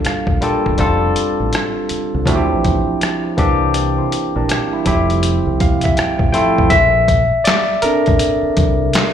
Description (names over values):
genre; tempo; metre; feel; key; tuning
R&B, neo-soul; 81 BPM; 4/4; swing 63% on 16ths; unclear; A4 = 441 Hz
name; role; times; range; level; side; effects
barky tine electric piano; accompaniment; 0.0-9.1 s; E3 to C6; -16 LUFS; moving between left 3 dB and right 4 dB; overdrive, auto-pan, slapback echo
boom bap sampler-style drum kit; drums; 0.0-9.1 s; handclaps, hi-hat, kick drum, rim click, snare drum; -18 LUFS; equal; none
deep dub fingered electric bass; bass; 0.1-8.9 s; E1 to D2; -19 LUFS; equal; none
room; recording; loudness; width
light reverb, digital ambience; live gig heard through the venue's PA, club reverb; -13 LUFS; side -9 dB against mid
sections
0.0-6.7 A section; 6.7-9.1 B section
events
tine electric piano fill 0.0-0.8, 5.2-6.7; tine electric piano solo 6.7-9.1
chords
0.0 Gm9; 0.8 F69; 2.3 Dm11; 3.4 C9; 4.9 Fmaj9; 6.7 Bbmaj9